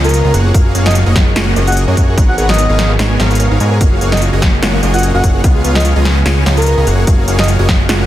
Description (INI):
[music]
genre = future bass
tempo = 147 BPM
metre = 4/4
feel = swing 54% on 16ths, half-time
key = F# major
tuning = A4 = 440 Hz
[part]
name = breathy flute-like synth lead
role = melody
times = 0.0-7.5 s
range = A#4 to F#5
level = -20 LUFS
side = equal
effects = chorus, sidechain pumping, digital delay
[part]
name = airy breathy pad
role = sustained chords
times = 0.0-8.1 s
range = C#3 to A#4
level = -26 LUFS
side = right 1 dB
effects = none
[part]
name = soft round pluck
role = arpeggios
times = 0.0-8.0 s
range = D#4 to G#5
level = -25 LUFS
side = right 3 dB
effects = chorus, sidechain pumping, dub echo
[part]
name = dense compressed supersaw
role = riff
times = 0.0-8.1 s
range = A#3 to G#5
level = -18 LUFS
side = equal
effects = sidechain pumping
[part]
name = fat analog bass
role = bass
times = 0.0-8.1 s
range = F#1 to G#2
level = -13 LUFS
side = equal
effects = sidechain pumping
[part]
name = big-room dance drum kit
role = drums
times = 0.0-8.0 s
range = hi-hat, snare drum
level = -18 LUFS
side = equal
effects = none
[part]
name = electronic kick drum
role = drums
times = 0.5-7.8 s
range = none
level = -11 LUFS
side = equal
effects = none
[sound]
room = digital ambience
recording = dense, heavily limited modern master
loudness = -9 LUFS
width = side -13 dB against mid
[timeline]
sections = 0.0-8.1 A section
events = none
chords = 0.3 F#maj9; 2.2 G#m11; 3.8 F#maj9; 5.4 C#7; 6.9 F#maj9